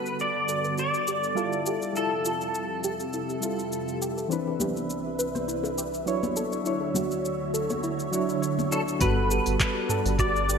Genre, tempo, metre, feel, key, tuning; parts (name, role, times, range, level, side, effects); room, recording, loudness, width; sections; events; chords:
sunset chillout; 102 BPM; 4/4; swing 54% on 16ths; G major; A4 = 441 Hz
pedal steel guitar; melody; 0.0-4.0, 8.7-10.6 s; A4 to D5; -29 LUFS; left 1 dB; ensemble chorus, ping-pong delay
soft electric-piano-like synth keys; accompaniment; 0.0-10.6 s; E3 to C#5; -30 LUFS; moving between left 4 dB and right 5 dB; chorus, tremolo, auto-pan, digital delay
soft string machine; sustained chords; 0.0-10.6 s; C2 to E5; -32 LUFS; right 1 dB; phaser, ensemble chorus
soft round pluck; arpeggios; 0.0-10.6 s; E4 to C#5; -34 LUFS; right 2 dB; chorus, digital delay
smooth R&B drum kit; drums; 0.1-10.6 s; handclaps, hi-hat, shaker, toms; -31 LUFS; equal; gated reverb
bongos and congas; percussion; 4.5-8.7 s; -34 LUFS; left 4 dB
warm sub bass; bass; 9.0-10.6 s; G1; -28 LUFS; equal
electronic kick drum; drums; 9.0-10.3 s; -28 LUFS; equal
moderate lush hall reverb, RT60 2.1 s; bright 1980s-style digital production; -25 LUFS; side -6 dB against mid
0.0-9.0 A section; 9.0-10.6 B section
filter sweep on string machine 0.0-9.0; filter sweep on synth pluck 0.0-9.0
0.0 Gmaj9; 1.7 Fmaj9; 4.3 Cmaj9; 6.4 Dmaj9; 9.0 Gmaj9